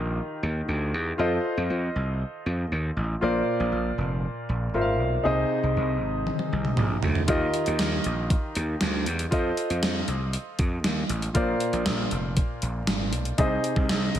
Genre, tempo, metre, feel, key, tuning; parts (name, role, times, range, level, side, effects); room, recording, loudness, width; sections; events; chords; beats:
1980s-style pop; 118 BPM; 4/4; straight; Eb major; A4 = 440 Hz
clear concert grand piano; accompaniment; 0.0-14.2 s; Bb2 to F5; -28 LUFS; left 1 dB
gritty slap bass; bass; 0.0-14.2 s; F1 to F2; -28 LUFS; equal; overdrive
gated 80s digital drum machine; drums; 6.3-14.2 s; hi-hat, kick drum, snare drum, toms; -26 LUFS; right 1 dB; gated reverb, gated reverb snare, overdrive
light reverb, digital ambience; -24 LUFS; side -11 dB against mid
0.0-14.2 A section
drum fill 6.3-7.3
0.0 Ebadd9; 1.2 F7; 3.2 Bbadd9; 5.3 Ab; 7.3 Ebadd9; 9.3 F7; 11.4 Bbadd9; 13.4 Ab
0.17 0.68 | 1.19 1.69 2.20 2.71 | 3.22 3.73 4.24 4.74 | 5.25 5.76 6.27 6.78 | 7.29 7.79 8.30 8.81 | 9.32 9.83 10.34 10.85 | 11.35 11.86 12.37 12.88 | 13.39 13.90